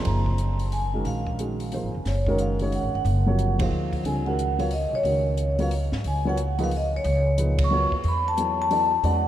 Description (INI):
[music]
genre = modal jazz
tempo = 180 BPM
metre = 3/4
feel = swing 63% on 8ths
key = unclear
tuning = A4 = 444 Hz
[part]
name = vibraphone with soft mallets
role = melody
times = 0.0-9.3 s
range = Db5 to Db6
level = -26 LUFS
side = equal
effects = none
[part]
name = dark upright piano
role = accompaniment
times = 0.0-9.2 s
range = Bb2 to D5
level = -29 LUFS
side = equal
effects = none
[part]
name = upright bass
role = bass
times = 0.0-9.3 s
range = F1 to Ab2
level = -25 LUFS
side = equal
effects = none
[part]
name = compact cocktail drum kit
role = drums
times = 0.0-9.1 s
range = hi-hat, kick drum, ride cymbal, snare drum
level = -34 LUFS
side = equal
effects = none
[sound]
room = moderate cathedral reverb, RT60 5.3 s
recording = in a vast, echoing space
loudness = -22 LUFS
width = side -12 dB against mid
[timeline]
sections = 0.0-4.0 A section; 4.0-9.3 B section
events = band accent 3.5, 7.5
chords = 0.0 Gbmaj9; 4.0 Db9sus4; 8.0 E9sus4